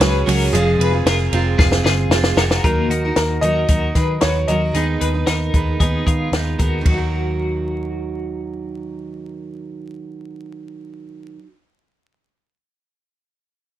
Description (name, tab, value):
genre	jangly indie pop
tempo	114 BPM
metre	4/4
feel	straight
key	Eb minor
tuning	A4 = 440 Hz
part	warm upright piano	melody	0.0-6.3 s	Ab4 to Eb5	-24 LUFS	left 1 dB	none
part	picked steel-string acoustic guitar	accompaniment	0.0-11.5 s	Eb3 to Cb5	-24 LUFS	right 5 dB	none
part	twelve-string electric guitar	arpeggios	0.0-8.4 s	Bb3 to Cb5	-25 LUFS	left 4 dB	tremolo
part	vintage muted picked electric bass	bass	0.0-11.4 s	F1 to Eb3	-21 LUFS	equal	none
part	compact cocktail drum kit	drums	0.0-7.0 s	hi-hat, kick drum, ride cymbal, snare drum	-19 LUFS	equal	none
room	little or no reverb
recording	vinyl crackle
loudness	-16 LUFS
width	side -12 dB against mid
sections	0.0-2.6 A section; 2.6-6.9 B section; 6.9-11.1 C section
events	drum fill 1.6-2.6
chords	0.0 Dbsus4; 0.5 Fm; 2.6 Ebm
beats	0.00 | 0.53 1.05 1.58 2.10 | 2.63 3.16 3.68 4.21 | 4.74 5.27 5.80 6.33 | 6.86 7.38 7.91 8.44 | 8.97 9.50 10.03 10.56